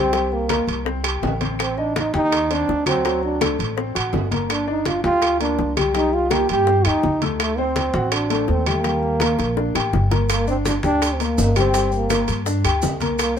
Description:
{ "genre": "latin, salsa", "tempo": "166 BPM", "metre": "4/4", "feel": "straight", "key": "G minor", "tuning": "A4 = 440 Hz", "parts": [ { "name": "breathy trombone", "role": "melody", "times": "0.0-13.4 s", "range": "A3 to G4", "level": "-22 LUFS", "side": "right 3 dB", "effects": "none" }, { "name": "clear grand piano", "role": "accompaniment", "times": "0.0-13.4 s", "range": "F#3 to G5", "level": "-24 LUFS", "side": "left 4 dB", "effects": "none" }, { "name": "upright bass", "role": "bass", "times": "0.0-13.4 s", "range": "G1 to G2", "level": "-24 LUFS", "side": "equal", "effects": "none" }, { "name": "bongos", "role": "percussion", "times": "0.1-13.4 s", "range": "none", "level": "-28 LUFS", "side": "left 6 dB", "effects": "none" }, { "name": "congas", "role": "percussion", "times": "0.1-13.4 s", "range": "none", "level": "-29 LUFS", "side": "left 1 dB", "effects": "none" }, { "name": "timbales", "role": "percussion", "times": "0.1-13.4 s", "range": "none", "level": "-27 LUFS", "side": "right 6 dB", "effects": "none" }, { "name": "claves", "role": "percussion", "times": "0.5-13.4 s", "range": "none", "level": "-33 LUFS", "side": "left 5 dB", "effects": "none" }, { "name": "maracas", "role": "percussion", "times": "10.3-13.4 s", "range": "none", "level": "-32 LUFS", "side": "right 3 dB", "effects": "none" } ], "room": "light reverb", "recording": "minimal, uncompressed stereo recording", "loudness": "-18 LUFS", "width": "side -8 dB against mid", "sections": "0.0-13.4 A section", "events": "drum fill 9.4-10.3", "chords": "0.1 C5; 1.6 Am7b5; 3.0 D7; 4.5 Gm7; 6.0 Cm7; 7.4 D7; 8.8 Ebmaj7; 10.3 Gm; 11.7 Gmadd11", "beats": "| 0.14 0.50 0.86 1.23 | 1.59 1.96 2.32 2.69 | 3.05 3.41 3.78 4.14 | 4.50 4.87 5.23 5.59 | 5.95 6.32 6.68 7.04 | 7.40 7.76 8.12 8.49 | 8.85 9.21 9.57 9.93 | 10.29 10.66 11.02 11.38 | 11.74 12.10 12.46 12.83 | 13.19" }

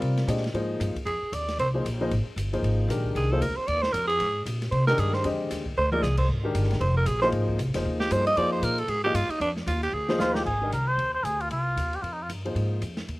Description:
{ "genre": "modal jazz", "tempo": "230 BPM", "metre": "4/4", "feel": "swing 59% on 8ths", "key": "F dorian", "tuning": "A4 = 440 Hz", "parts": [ { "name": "warm upright piano", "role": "accompaniment", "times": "0.0-12.8 s", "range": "D3 to Eb5", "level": "-29 LUFS", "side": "left 2 dB", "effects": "slapback echo" }, { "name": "upright bass", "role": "bass", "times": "0.0-13.2 s", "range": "F1 to C3", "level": "-28 LUFS", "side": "equal", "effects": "none" }, { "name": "open jazz drum kit", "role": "drums", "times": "0.0-13.2 s", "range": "crash cymbal, hi-hat, kick drum, ride cymbal, snare drum, toms", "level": "-36 LUFS", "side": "equal", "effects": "none" }, { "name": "growling alto saxophone", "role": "second line", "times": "1.1-10.4 s", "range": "D4 to Eb5", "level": "-26 LUFS", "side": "right 1 dB", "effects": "none" }, { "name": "trumpet with cup mute", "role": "melody", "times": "10.2-12.3 s", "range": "Eb4 to C5", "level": "-28 LUFS", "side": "equal", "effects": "none" } ], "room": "little or no reverb", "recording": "recorded outdoors, with no room sound", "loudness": "-24 LUFS", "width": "side -20 dB against mid", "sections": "0.0-10.5 A section; 10.5-13.2 B section", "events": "alto saxophone solo 0.0-10.5; drum fill 5.8, 9.9-10.5", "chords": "0.0 Fm7", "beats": "| 0.02 0.28 0.55 0.81 | 1.07 1.33 1.59 1.85 | 2.11 2.37 2.63 2.90 | 3.16 3.42 3.68 3.94 | 4.20 4.46 4.72 4.98 | 5.24 5.50 5.77 6.03 | 6.29 6.55 6.81 7.07 | 7.33 7.59 7.85 8.11 | 8.37 8.63 8.89 9.15 | 9.41 9.68 9.94 10.20 | 10.46 10.72 10.98 11.24 | 11.51 11.77 12.03 12.29 | 12.56 12.82 13.08" }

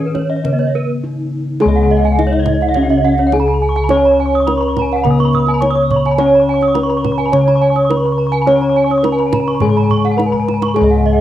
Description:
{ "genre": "Balinese gamelan", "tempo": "105 BPM", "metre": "4/4", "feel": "straight", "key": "Db slendro", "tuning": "A4 = 440 Hz", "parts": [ { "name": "gamelan-type bronze metallophone", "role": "melody", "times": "0.0-11.2 s", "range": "Cb4-45c to Db5", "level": "-17 LUFS", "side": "right 1 dB", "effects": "cassette tape" }, { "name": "gamelan-type bronze metallophone", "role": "accompaniment", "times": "0.0-11.2 s", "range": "Db3 to Db4", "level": "-20 LUFS", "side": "left 6 dB", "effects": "cassette tape" }, { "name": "gamelan-type bronze metallophone", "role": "arpeggios", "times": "0.0-11.2 s", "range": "Cb5-45c to Eb6+30c", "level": "-24 LUFS", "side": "left 6 dB", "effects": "cassette tape, plate reverb" }, { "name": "kendang", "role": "percussion", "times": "0.0-10.9 s", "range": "none", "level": "-24 LUFS", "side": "right 6 dB", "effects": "none" }, { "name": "gamelan-type bronze metallophone", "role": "arpeggios", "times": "0.1-11.1 s", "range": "Cb5-45c to Eb6+30c", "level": "-20 LUFS", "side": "right 7 dB", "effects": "cassette tape, plate reverb" }, { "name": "gamelan-type bossed gongs", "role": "bass", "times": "0.4-11.2 s", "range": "Db2 to Db5", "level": "-16 LUFS", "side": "equal", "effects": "none" } ], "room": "moderate studio reverb, RT60 0.5 s", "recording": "home recording on cassette", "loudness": "-11 LUFS", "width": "side -12 dB against mid", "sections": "0.0-1.6 A section; 1.6-11.2 B section", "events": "break 0.7-1.6; drum fill 10.3-10.8", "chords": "none", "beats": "0.45 1.03 | 1.61 2.18 2.75 3.33 | 3.90 4.47 5.04 5.61 | 6.18 6.75 7.33 7.90 | 8.47 9.04 9.61 10.18 | 10.75" }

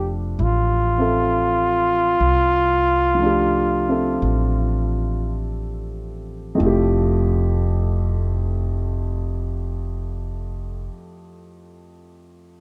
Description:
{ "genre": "jazz ballad", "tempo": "47-69 BPM", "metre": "4/4", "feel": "swing 68% on 8ths", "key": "F major", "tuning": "A4 = 440 Hz", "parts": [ { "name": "trumpet with bucket mute", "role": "melody", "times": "0.0-5.4 s", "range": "E4 to G4", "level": "-22 LUFS", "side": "equal", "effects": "plate reverb" }, { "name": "dark upright piano", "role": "accompaniment", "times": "0.0-12.6 s", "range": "F2 to E5", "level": "-27 LUFS", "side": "equal", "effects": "none" }, { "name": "upright bass", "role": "bass", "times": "0.0-10.9 s", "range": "F1 to C2", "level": "-25 LUFS", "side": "equal", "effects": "none" } ], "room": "light reverb", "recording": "none", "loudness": "-20 LUFS", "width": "mono", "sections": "0.0-6.6 A section; 6.6-11.6 B section", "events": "slowing down 0.0-6.6", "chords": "0.0 Fmaj9", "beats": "0.37 1.27 | 2.20 3.18 4.23 5.37 | 6.59 7.85 9.10 10.34" }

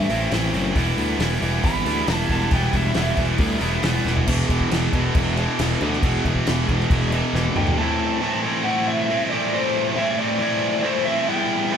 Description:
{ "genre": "quiet-loud alternative rock", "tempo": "137 BPM", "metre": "4/4", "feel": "straight", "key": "E minor", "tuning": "A4 = 444 Hz", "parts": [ { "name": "lead guitar through a small cranked amp", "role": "melody", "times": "0.0-3.2, 7.6-11.8 s", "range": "C5 to B5", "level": "-25 LUFS", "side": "equal", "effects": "overdrive" }, { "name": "high-gain distorted guitar", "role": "riff", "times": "0.0-11.8 s", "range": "E2 to E4", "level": "-22 LUFS", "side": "equal", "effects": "distortion" }, { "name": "fuzz picked electric bass", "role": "bass", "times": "0.0-7.7 s", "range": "E1 to D2", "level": "-23 LUFS", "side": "equal", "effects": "overdrive" }, { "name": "loose indie drum kit", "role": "drums", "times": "0.1-7.8 s", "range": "crash cymbal, hi-hat, kick drum, snare drum, toms", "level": "-25 LUFS", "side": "equal", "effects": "none" } ], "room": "moderate studio reverb, RT60 0.7 s", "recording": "band playing live in one room", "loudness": "-18 LUFS", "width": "side -8 dB against mid", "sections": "0.0-4.3 A section; 4.3-7.8 B section; 7.8-11.8 C section", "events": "lead electric guitar solo 0.0-4.3; drum fill 4.1, 7.3-7.8", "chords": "0.0 Am; 0.8 Em; 4.3 E5; 7.8 Am; 11.3 Em", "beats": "0.32 | 0.76 1.20 1.64 2.08 | 2.52 2.96 3.39 3.83 | 4.27 4.71 5.15 5.58 | 6.02 6.46 6.90 7.34 | 7.77 8.21 8.65 9.09 | 9.52 9.96 10.40 10.83 | 11.27 11.71" }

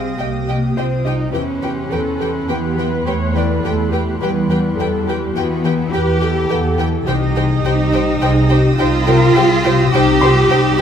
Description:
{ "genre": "cinematic, suspense film score", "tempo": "105 BPM", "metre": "5/4", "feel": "straight", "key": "unclear", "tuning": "A4 = 436 Hz", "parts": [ { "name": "dark symphonic viola section", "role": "accompaniment", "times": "0.0-10.8 s", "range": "B3 to Db5", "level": "-22 LUFS", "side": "equal", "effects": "none" }, { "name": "concert harp", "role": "riff", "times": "0.0-10.8 s", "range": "E2 to C4", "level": "-21 LUFS", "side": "left 8 dB", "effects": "none" }, { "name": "dark symphonic double bass section", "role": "bass", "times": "0.0-10.8 s", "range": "C2 to E2", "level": "-20 LUFS", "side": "right 3 dB", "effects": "none" }, { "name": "warm studio cello section", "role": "bass", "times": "0.0-10.8 s", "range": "G3 to G4", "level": "-19 LUFS", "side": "right 2 dB", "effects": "none" }, { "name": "clear concert grand piano", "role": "texture", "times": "0.0-10.8 s", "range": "C5 to C6", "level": "-28 LUFS", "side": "left 2 dB", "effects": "none" }, { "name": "warm chamber violin section", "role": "texture", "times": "0.0-10.8 s", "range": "B5 to Bb6", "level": "-29 LUFS", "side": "right 1 dB", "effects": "none" }, { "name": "warm symphonic violin section", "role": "melody", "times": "0.2-10.8 s", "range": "G5", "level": "-28 LUFS", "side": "left 2 dB", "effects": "none" }, { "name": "dark symphonic violin section", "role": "second line", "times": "0.2-10.8 s", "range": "G4 to Eb5", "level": "-24 LUFS", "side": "equal", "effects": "none" } ], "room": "moderate scoring stage reverb, RT60 1.7 s", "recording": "none", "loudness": "-14 LUFS", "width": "side -8 dB against mid", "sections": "0.0-10.8 A section", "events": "none", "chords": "0.0 Cm; 1.4 Em; 7.1 Cm", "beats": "0.21 0.78 | 1.35 1.92 2.50 3.07 3.64 | 4.21 4.78 5.35 5.92 6.50 | 7.07 7.64 8.21 8.78 9.35 | 9.92 10.50" }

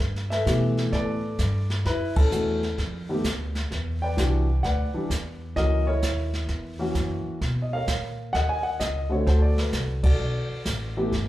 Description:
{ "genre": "jazz piano trio", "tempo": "129 BPM", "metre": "4/4", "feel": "swing 67% on 8ths", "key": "G major", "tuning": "A4 = 439 Hz", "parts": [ { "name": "warm grand piano", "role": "melody", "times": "0.0-11.1 s", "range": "D3 to Ab5", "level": "-27 LUFS", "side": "left 1 dB", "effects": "slapback echo" }, { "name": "upright bass", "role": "bass", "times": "0.0-11.3 s", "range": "G1 to B2", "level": "-26 LUFS", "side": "equal", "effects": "none" }, { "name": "jazz brush drum kit", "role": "drums", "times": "0.0-11.3 s", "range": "brushed snare drum, hi-hat, kick drum, ride cymbal, snare drum", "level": "-28 LUFS", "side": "equal", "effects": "none" } ], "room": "light reverb", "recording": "live gig heard through the venue's PA, club reverb", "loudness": "-23 LUFS", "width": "side -15 dB against mid", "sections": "0.0-11.3 A section", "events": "band accent 2.1, 10.0", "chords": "0.0 G69; 1.9 F#m7; 2.8 N.C.; 3.7 Em9; 5.6 F#7; 7.4 Bmaj9; 9.3 D7", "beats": "| 0.00 0.46 0.92 1.39 | 1.85 2.31 2.78 3.24 | 3.70 4.17 4.63 5.09 | 5.56 6.02 6.49 6.95 | 7.41 7.88 8.34 8.80 | 9.27 9.73 10.20 10.66 | 11.12" }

